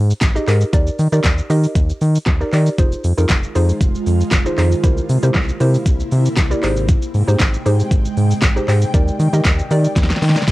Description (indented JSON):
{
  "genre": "dance-pop",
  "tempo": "117 BPM",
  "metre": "4/4",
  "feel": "straight",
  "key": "unclear",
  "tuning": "A4 = 440 Hz",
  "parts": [
    { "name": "round analog bass", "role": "bass", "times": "0.0-10.5 s", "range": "F1 to Eb3", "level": "-16 LUFS", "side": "equal", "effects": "sidechain pumping" },
    { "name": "pop drum kit", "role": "drums", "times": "0.1-10.5 s", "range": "handclaps, hi-hat, kick drum, shaker, snare drum", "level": "-17 LUFS", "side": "equal", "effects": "none" },
    { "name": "hollow square pluck", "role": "accompaniment", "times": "0.4-10.2 s", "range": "Eb4 to Eb5", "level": "-22 LUFS", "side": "right 1 dB", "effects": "chorus, sidechain pumping" },
    { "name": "ethereal airy pad", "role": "sustained chords", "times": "3.5-10.5 s", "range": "C3 to G5", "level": "-25 LUFS", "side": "right 1 dB", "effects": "ensemble chorus, built-in reverb, sidechain pumping" }
  ],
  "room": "little or no reverb",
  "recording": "home recording on cassette",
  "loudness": "-14 LUFS",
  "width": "side -18 dB against mid",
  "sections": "0.0-10.5 A section",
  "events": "drum fill 10.0-10.5",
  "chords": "0.0 Abmaj7(no3); 0.7 Ebmaj7; 2.8 Fm7; 4.8 C7; 6.6 Abmaj7; 8.9 Ebmaj7",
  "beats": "0.22 | 0.73 1.25 1.76 2.27 | 2.79 3.30 3.81 4.32 | 4.84 5.35 5.86 6.38 | 6.89 7.40 7.91 8.43 | 8.94 9.45 9.96 10.48"
}